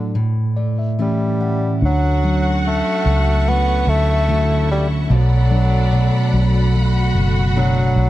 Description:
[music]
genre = pop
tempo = 73 BPM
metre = 4/4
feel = straight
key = D major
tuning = A4 = 440 Hz
[part]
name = clear bassoon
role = melody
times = 0.0-8.1 s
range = D3 to B3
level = -22 LUFS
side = equal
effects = none
[part]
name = mellow tine electric piano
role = accompaniment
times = 0.0-8.1 s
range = A2 to F#5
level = -18 LUFS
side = right 1 dB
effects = medium stereo tremolo
[part]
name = picked steel-string acoustic guitar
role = arpeggios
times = 0.0-8.1 s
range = A2 to F#4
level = -27 LUFS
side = left 7 dB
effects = none
[part]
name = warm studio violin section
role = second line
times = 1.8-8.1 s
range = D4 to F#5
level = -28 LUFS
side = left 1 dB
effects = none
[part]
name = clear studio string section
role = sustained chords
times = 1.8-8.1 s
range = A4 to C#6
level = -29 LUFS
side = right 1 dB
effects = none
[part]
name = vintage muted fingered electric bass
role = bass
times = 1.8-8.1 s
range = F#1 to D2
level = -18 LUFS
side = equal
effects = none
[sound]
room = little or no reverb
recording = dry, close 1970s-style studio recording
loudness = -14 LUFS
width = side -15 dB against mid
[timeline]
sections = 0.0-1.8 A section; 1.8-8.1 B section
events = tine electric piano fill 0.1-1.8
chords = 0.1 A; 1.8 Dmaj7; 5.1 Bm7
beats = 0.15 0.98 | 1.82 2.64 3.46 4.28 | 5.10 5.92 6.74 7.55

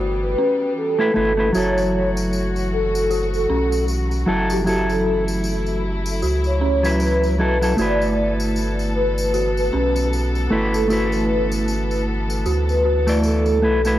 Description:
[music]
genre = trip hop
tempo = 77 BPM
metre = 4/4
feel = swing 58% on 16ths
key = unclear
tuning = A4 = 440 Hz
[part]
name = mellow electric guitar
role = accompaniment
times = 0.0-14.0 s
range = F#3 to D5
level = -22 LUFS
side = equal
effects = harmonic tremolo, tape echo
[part]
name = muted studio string section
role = sustained chords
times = 0.0-14.0 s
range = E3 to A4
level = -30 LUFS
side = left 2 dB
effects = none
[part]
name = dark detuned synth bell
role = arpeggios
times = 0.0-14.0 s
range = C#4 to A4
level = -28 LUFS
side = right 2 dB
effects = chorus, tape echo
[part]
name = warm sub bass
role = bass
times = 0.0-14.0 s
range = F#1 to D2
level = -23 LUFS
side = equal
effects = none
[part]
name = pure breathy sine lead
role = melody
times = 0.2-14.0 s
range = G4 to D5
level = -22 LUFS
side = left 1 dB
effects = analog chorus, tape echo
[part]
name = tambourine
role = percussion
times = 1.5-14.0 s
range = none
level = -35 LUFS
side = left 3 dB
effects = none
[sound]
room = studio ambience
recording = dry, gritty hardware recording, vinyl crackle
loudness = -17 LUFS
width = side -13 dB against mid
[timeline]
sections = 0.0-14.0 A section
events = none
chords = 0.0 G69; 1.5 F#m7; 7.8 G69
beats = 0.77 | 1.55 2.33 3.11 3.89 | 4.67 5.45 6.22 7.00 | 7.78 8.56 9.34 10.12 | 10.90 11.68 12.46 13.24

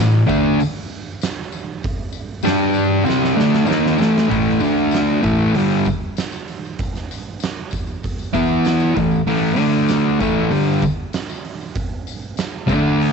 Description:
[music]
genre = garage rock duo or trio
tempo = 97 BPM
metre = 4/4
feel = straight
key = unclear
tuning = A4 = 439 Hz
[part]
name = fuzz guitar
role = riff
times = 0.0-13.1 s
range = G2 to G4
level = -15 LUFS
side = equal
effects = distortion
[part]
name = oversized low-tuned drum kit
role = drums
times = 0.3-13.1 s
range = hi-hat, kick drum, snare drum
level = -25 LUFS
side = right 4 dB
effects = none
[part]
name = tambourine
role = percussion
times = 0.3-12.8 s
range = none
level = -39 LUFS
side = left 16 dB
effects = none
[sound]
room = light reverb, small room ambience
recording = 1960s-style stereo, nothing above 8.0 kHz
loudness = -16 LUFS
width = side -5 dB against mid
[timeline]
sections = 0.0-4.3 A section; 4.3-13.1 B section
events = drum fill 3.1-4.3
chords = 0.0 A5; 2.4 G5; 3.1 A5; 4.6 D5; 5.2 A5; 8.3 E5; 9.0 A5; 9.6 D5; 10.2 A5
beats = 0.60 1.21 | 1.83 2.45 3.07 3.69 | 4.30 4.92 5.54 6.16 | 6.78 7.41 8.03 8.65 | 9.27 9.89 10.51 11.14 | 11.76 12.38 13.00

